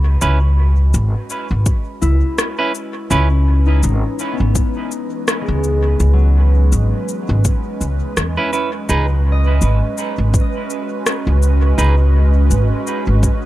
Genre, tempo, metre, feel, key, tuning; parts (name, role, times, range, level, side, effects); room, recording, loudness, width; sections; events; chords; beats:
ambient dub; 83 BPM; 4/4; swing 57% on 16ths; C# minor; A4 = 440 Hz
airy breathy pad; sustained chords; 0.0-13.5 s; E3 to D#5; -25 LUFS; right 2 dB; chorus
concert harp; arpeggios; 0.0-11.1 s; F#3 to B5; -26 LUFS; left 3 dB; dub echo
upright bass; bass; 0.0-13.2 s; G#1 to E2; -13 LUFS; equal
semi-hollow electric guitar; stabs; 0.2-3.3, 8.4-11.9 s; C#4 to B4; -24 LUFS; right 3 dB; dub echo
electronic shaker and rim click; drums; 0.2-13.4 s; -22 LUFS; left 1 dB; overdrive, dub echo
electronic kick drum; drums; 1.7-13.4 s; -17 LUFS; equal
little or no reverb; -14 LUFS; side -15 dB against mid
0.0-13.5 A section
fade-in on analog synth pad 0.0-13.5
0.0 C#m7; 8.9 G#m
| 0.22 0.94 1.66 2.39 | 3.11 3.83 4.55 5.28 | 6.00 6.72 7.45 8.17 | 8.89 9.62 10.34 11.06 | 11.78 12.51 13.23